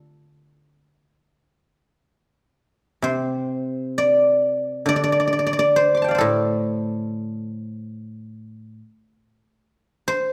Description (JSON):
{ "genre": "chinese traditional, Chinese solo plucked strings", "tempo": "62-70 BPM", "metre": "4/4", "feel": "rubato", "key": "D yu mode", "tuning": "A4 = 440 Hz", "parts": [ { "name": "guzheng", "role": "solo", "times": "0.0-10.3 s", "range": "A2 to D6", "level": "-22 LUFS", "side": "equal", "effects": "none" } ], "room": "moderate recital hall reverb, RT60 1.5 s", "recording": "none", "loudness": "-21 LUFS", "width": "mono", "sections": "0.0-3.0 A section; 3.0-10.3 B section", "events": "none", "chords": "none" }